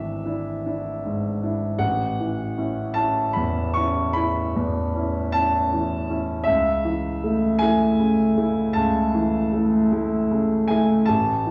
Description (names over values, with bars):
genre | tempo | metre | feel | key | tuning
classical, romantic nocturne for solo piano | 52 BPM (dotted quarters) | 12/8 | rubato | A major | A4 = 439 Hz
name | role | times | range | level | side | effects
warm concert grand piano | solo | 0.0-11.5 s | G#1 to C#6 | -22 LUFS | equal | none
room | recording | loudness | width
wet recital hall reverb, RT60 1.5 s | worn, warbling old tape, cassette tape, warbly pitch drift, small room reverb | -22 LUFS | mono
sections
0.0-11.5 A section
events
none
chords
0.0 E7/G#; 1.8 A; 6.5 A/C#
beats
0.66 | 1.83 2.97 4.18 5.36 | 6.48 7.62 8.77 9.92 | 11.09